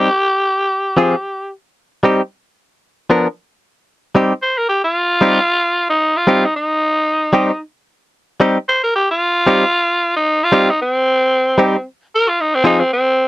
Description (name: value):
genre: blues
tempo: 113 BPM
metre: 4/4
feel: swing 54% on 16ths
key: C minor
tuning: A4 = 439 Hz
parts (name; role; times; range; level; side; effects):
- raspy tenor saxophone; melody; 0.0-13.3 s; C4 to C5; -14 LUFS; equal; none
- direct-recorded clean electric guitar; stabs; 0.0-12.8 s; F3 to Bb4; -12 LUFS; equal; none
room: light reverb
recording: dry, close 1970s-style studio recording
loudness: -13 LUFS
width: side -17 dB against mid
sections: 0.0-3.6 A section; 3.6-13.3 B section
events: tenor saxophone solo 3.6-13.3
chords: 0.4 Fm; 1.5 Cm; 2.6 Fsus4; 3.6 Cm; 12.1 Fm